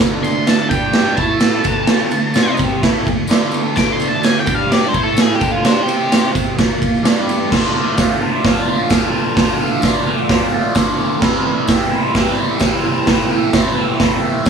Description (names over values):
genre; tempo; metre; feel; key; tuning
garage rock duo or trio; 129 BPM; 4/4; straight; D minor; A4 = 440 Hz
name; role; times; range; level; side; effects
overdriven semi-hollow guitar; riff; 0.0-14.5 s; A2 to C5; -18 LUFS; right 1 dB; phaser
raw garage drum kit; drums; 0.0-14.5 s; crash cymbal, hi-hat, kick drum, ride cymbal, snare drum; -16 LUFS; right 1 dB; none
tambourine; percussion; 0.0-14.5 s; none; -34 LUFS; left 10 dB; none
octave-fuzz lead guitar; melody; 0.2-6.3 s; D4 to D6; -20 LUFS; left 1 dB; distortion
room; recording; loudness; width
light reverb; none; -13 LUFS; side -6 dB against mid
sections
0.0-7.5 A section; 7.5-14.5 B section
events
lead electric guitar solo 0.0-7.5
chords
0.0 D5; 0.7 G5; 1.2 A5; 1.7 D5; 2.4 C5; 2.8 D5; 4.5 G5; 4.9 A5; 5.4 Dm; 5.6 C5; 6.6 Bb5; 7.0 G5; 7.5 Dm; 11.2 C; 13.1 Am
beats
| 0.02 0.48 0.95 1.42 | 1.89 2.36 2.83 3.30 | 3.77 4.24 4.70 5.17 | 5.64 6.11 6.57 7.04 | 7.51 7.97 8.44 8.90 | 9.37 9.83 10.29 10.76 | 11.22 11.68 12.15 12.61 | 13.07 13.53 14.00 14.46